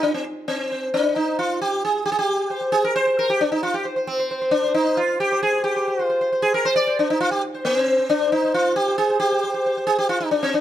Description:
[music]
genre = indian classical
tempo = 134 BPM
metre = 4/4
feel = straight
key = C raga darbari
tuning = A4 = 439 Hz
[part]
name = sitar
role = solo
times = 0.0-10.6 s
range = C4 to D5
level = -19 LUFS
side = equal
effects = none
[sound]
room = light reverb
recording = close, detailed microphones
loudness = -19 LUFS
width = side -11 dB against mid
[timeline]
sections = 0.0-2.1 A section; 2.1-10.6 B section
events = none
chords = none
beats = | 0.25 0.70 1.15 1.60 | 2.05 2.50 2.95 3.40 | 3.85 4.30 4.75 5.20 | 5.64 6.09 6.54 6.98 | 7.43 7.88 8.32 8.77 | 9.21 9.65 10.10 10.54

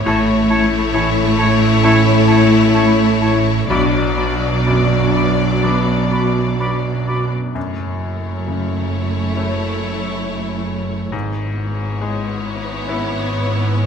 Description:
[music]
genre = cinematic, emotional film score for orchestra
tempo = 62-70 BPM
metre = 4/4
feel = rubato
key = unclear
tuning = A4 = 439 Hz
[part]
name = warm studio violin section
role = melody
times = 0.0-13.9 s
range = C#5 to D5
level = -25 LUFS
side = left 5 dB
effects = none
[part]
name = clear oboe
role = second line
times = 0.0-7.2 s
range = C#5 to D5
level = -24 LUFS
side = equal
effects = none
[part]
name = bright grand piano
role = accompaniment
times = 0.0-13.9 s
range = B1 to E4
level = -24 LUFS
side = left 4 dB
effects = none
[part]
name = rich studio viola section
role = accompaniment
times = 0.0-13.9 s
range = F#3 to B3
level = -24 LUFS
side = right 2 dB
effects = none
[part]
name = mellow French horn section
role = sustained chords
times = 0.0-7.2 s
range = C#4 to F#4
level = -22 LUFS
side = left 7 dB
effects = none
[part]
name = warm studio cello section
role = bass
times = 0.0-13.9 s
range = F#2 to B2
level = -22 LUFS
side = right 2 dB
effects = none
[part]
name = warm studio double bass section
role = bass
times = 0.0-13.9 s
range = F#1 to B1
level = -20 LUFS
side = right 5 dB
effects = none
[part]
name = clear studio violin section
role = second line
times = 0.1-13.9 s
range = D4 to E4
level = -26 LUFS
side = left 5 dB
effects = none
[part]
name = concert flute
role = second line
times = 0.1-7.2 s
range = A5 to B5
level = -28 LUFS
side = left 2 dB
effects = none
[part]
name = mellow clarinet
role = second line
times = 0.1-7.2 s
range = E4 to F#4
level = -26 LUFS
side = left 3 dB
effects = none
[sound]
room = moderate concert hall reverb, RT60 2.0 s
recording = minimal, uncompressed stereo recording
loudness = -14 LUFS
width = side -6 dB against mid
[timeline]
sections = 0.0-7.6 A section; 7.6-13.9 B section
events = none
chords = 0.1 A; 3.7 Bm; 7.6 F#m7; 11.1 C#m7/G#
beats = | 0.06 0.94 1.84 2.75 | 3.69 4.66 5.63 6.60 | 7.56 8.48 9.37 10.25 | 11.13 12.01 12.88 13.74

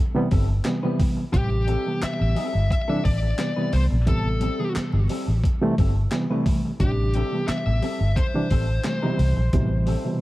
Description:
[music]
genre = funk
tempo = 88 BPM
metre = 4/4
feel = straight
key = A minor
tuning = A4 = 441 Hz
[part]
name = reed electric piano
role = stabs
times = 0.1-10.2 s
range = B2 to D4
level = -26 LUFS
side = right 1 dB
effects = overdrive, fast tremolo
[part]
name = electric guitar at the edge of break-up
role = accompaniment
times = 0.3-10.1 s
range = G3 to B4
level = -33 LUFS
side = left 2 dB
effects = spring reverb
[part]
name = vintage muted fingered electric bass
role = bass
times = 0.3-9.9 s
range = G1 to C2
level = -22 LUFS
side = equal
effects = none
[part]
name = breakbeat sampler-style drum kit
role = drums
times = 0.3-10.0 s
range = handclaps, hi-hat, kick drum, snare drum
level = -25 LUFS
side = equal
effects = none
[part]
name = smooth overdriven lead guitar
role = melody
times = 1.3-10.2 s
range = G4 to E5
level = -30 LUFS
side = left 2 dB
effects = tape echo
[sound]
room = little or no reverb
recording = dark, warm production, vinyl crackle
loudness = -20 LUFS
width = side -17 dB against mid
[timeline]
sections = 0.0-10.2 A section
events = none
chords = 0.0 Am7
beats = 0.65 | 1.34 2.02 2.70 3.38 | 4.07 4.75 5.43 6.12 | 6.80 7.48 8.16 8.85 | 9.53

